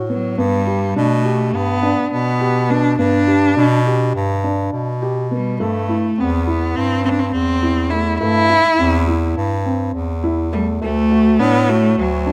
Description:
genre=contemporary instrumental, chamber music in an uneven meter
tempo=207 BPM (eighths)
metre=9/8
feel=straight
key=G major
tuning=A4 = 440 Hz
part: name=bright bass clarinet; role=bass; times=0.0-12.3 s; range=D2 to B2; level=-22 LUFS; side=equal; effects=none
part: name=rich cello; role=melody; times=0.1-12.3 s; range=F#3 to E4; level=-20 LUFS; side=equal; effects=none
part: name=felt-muted upright piano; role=arpeggios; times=0.1-12.3 s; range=A3 to G4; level=-24 LUFS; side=equal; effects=none
room=light reverb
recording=close, detailed microphones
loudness=-17 LUFS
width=mono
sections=0.0-12.3 A section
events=none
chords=0.4 G; 5.6 Am; 10.8 D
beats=0.09 | 0.38 0.67 0.96 1.25 1.54 1.83 2.12 2.41 2.70 | 2.99 3.28 3.57 3.86 4.15 4.44 4.73 5.02 5.31 | 5.60 5.89 6.18 6.47 6.76 7.05 7.34 7.63 7.92 | 8.21 8.50 8.79 9.08 9.37 9.66 9.95 10.24 10.53 | 10.82 11.11 11.40 11.69 11.98 12.27

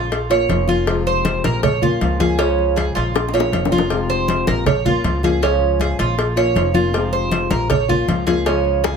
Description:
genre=latin, Cuban son and guajira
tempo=158 BPM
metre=4/4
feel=straight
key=unclear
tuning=A4 = 440 Hz
part: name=nylon-string guitar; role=accompaniment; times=0.0-9.0 s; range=C3 to F4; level=-21 LUFS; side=left 4 dB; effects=none
part: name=Cuban tres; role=arpeggios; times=0.0-9.0 s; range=Db4 to Db5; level=-20 LUFS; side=right 7 dB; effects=none
part: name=upright bass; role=bass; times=0.0-9.0 s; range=F1 to Db2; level=-22 LUFS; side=equal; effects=none
part: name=congas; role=percussion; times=0.1-9.0 s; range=none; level=-22 LUFS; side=left 1 dB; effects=none
part: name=cowbell and bongos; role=percussion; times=0.1-9.0 s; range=none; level=-24 LUFS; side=left 4 dB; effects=none
room=light reverb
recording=none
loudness=-15 LUFS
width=side -6 dB against mid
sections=0.0-9.0 A section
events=drum fill 3.1-3.9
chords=0.0 Bbm; 0.9 Fm; 1.6 Bbm; 3.9 Fm; 4.7 Bbm; 6.9 Fm; 7.7 Bbm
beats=0.11 0.49 | 0.87 1.25 1.63 2.01 | 2.39 2.77 3.15 3.53 | 3.91 4.29 4.67 5.04 | 5.42 5.80 6.18 6.56 | 6.94 7.32 7.70 8.08 | 8.46 8.84

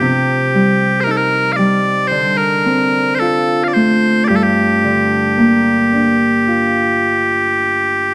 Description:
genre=celtic folk, Celtic slow air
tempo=49-58 BPM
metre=4/4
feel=rubato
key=G minor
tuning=A4 = 440 Hz
part: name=loud bright bagpipes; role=melody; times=0.0-8.1 s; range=G4 to F5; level=-17 LUFS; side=equal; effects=none
part: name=Celtic harp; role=accompaniment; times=0.0-8.1 s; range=G2 to F4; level=-17 LUFS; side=equal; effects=none
room=light reverb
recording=dark, warm production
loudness=-14 LUFS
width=mono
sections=0.0-8.1 A section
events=none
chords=0.0 Cm; 2.1 Dm7; 4.3 Gm7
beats=| 0.01 1.06 2.12 3.20 | 4.29 5.37 6.48 7.65

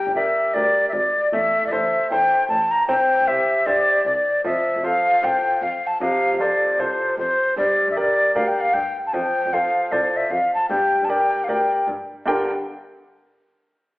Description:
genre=celtic folk, Celtic hornpipe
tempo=154 BPM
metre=4/4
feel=swing 61% on 8ths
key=G dorian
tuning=A4 = 441 Hz
part: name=wooden flute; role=melody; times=0.0-11.9 s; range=C5 to Bb5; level=-18 LUFS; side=left 1 dB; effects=none
part: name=clear baby grand piano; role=accompaniment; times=0.0-12.5 s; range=G2 to G5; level=-25 LUFS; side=right 1 dB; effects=none
part: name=dark double bass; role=bass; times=0.1-12.3 s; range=G1 to G2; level=-33 LUFS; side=equal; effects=none
room=wet recital hall reverb, RT60 1.3 s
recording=recorded in a church or concert hall, telephone sound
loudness=-18 LUFS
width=side -18 dB against mid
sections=0.0-12.3 A section; 12.3-13.8 B section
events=none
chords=0.0 Gm; 1.3 Am; 2.9 C; 4.4 F; 7.6 Gm; 9.1 F; 10.7 Gm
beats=0.16 0.55 0.94 | 1.33 1.72 2.11 2.50 | 2.89 3.28 3.67 4.06 | 4.45 4.84 5.23 5.62 | 6.01 6.40 6.79 7.18 | 7.57 7.96 8.35 8.74 | 9.13 9.53 9.92 10.31 | 10.70 11.09 11.48 11.87 | 12.26

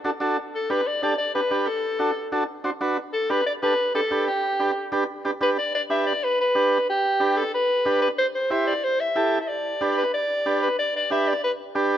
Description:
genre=latin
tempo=184 BPM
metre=4/4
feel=straight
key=G major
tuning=A4 = 442 Hz
part: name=combo organ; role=accompaniment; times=0.0-12.0 s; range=D4 to C5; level=-25 LUFS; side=right 2 dB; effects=none
part: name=breathy soprano saxophone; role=melody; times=0.5-11.5 s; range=G4 to E5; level=-23 LUFS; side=left 1 dB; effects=none
room=wet plate reverb, RT60 2.8 s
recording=heard from further back in the room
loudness=-21 LUFS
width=side -10 dB against mid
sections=0.0-5.6 A section; 5.6-12.0 B section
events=none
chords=0.4 G; 1.7 D; 3.0 G; 8.2 C; 9.5 G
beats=0.05 | 0.37 0.70 1.02 1.35 | 1.67 2.00 2.33 2.65 | 2.98 3.30 3.63 3.95 | 4.28 4.60 4.93 5.25 | 5.58 5.91 6.23 6.55 | 6.88 7.21 7.53 7.86 | 8.18 8.51 8.83 9.16 | 9.48 9.81 10.13 10.46 | 10.78 11.11 11.43 11.76

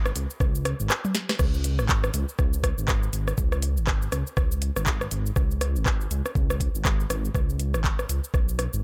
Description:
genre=afro house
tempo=121 BPM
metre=4/4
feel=swing 59% on 16ths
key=unclear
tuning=A4 = 437 Hz
part: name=dark detuned saw bass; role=bass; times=0.0-8.8 s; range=G#1 to C#2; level=-29 LUFS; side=equal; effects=sidechain pumping
part: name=afro-pop drum kit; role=drums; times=0.1-8.8 s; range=crash cymbal, handclaps, hi-hat, rim click, shaker, snare drum, toms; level=-31 LUFS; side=equal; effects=none
part: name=electronic kick drum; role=drums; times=0.4-8.5 s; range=none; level=-27 LUFS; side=equal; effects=none
room=little or no reverb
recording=none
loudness=-25 LUFS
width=mono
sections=0.0-8.8 A section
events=drum fill 1.0-1.4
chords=none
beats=0.41 0.90 | 1.40 1.89 2.39 2.88 | 3.38 3.88 4.37 4.87 | 5.36 5.86 6.36 6.85 | 7.35 7.84 8.34 8.84

